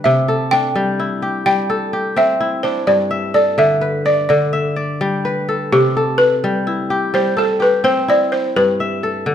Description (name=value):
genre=west african traditional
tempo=85 BPM (dotted quarters)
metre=12/8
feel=straight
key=C major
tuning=A4 = 440 Hz
part: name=balafon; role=melody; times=0.0-9.3 s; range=G4 to G5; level=-16 LUFS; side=equal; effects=none
part: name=kora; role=arpeggios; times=0.0-9.3 s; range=G2 to E5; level=-18 LUFS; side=left 2 dB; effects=none
room=moderate recital hall reverb, RT60 1.7 s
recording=none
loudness=-14 LUFS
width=side -9 dB against mid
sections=0.0-9.3 A section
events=none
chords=0.0 C; 2.9 G; 5.7 C; 8.6 G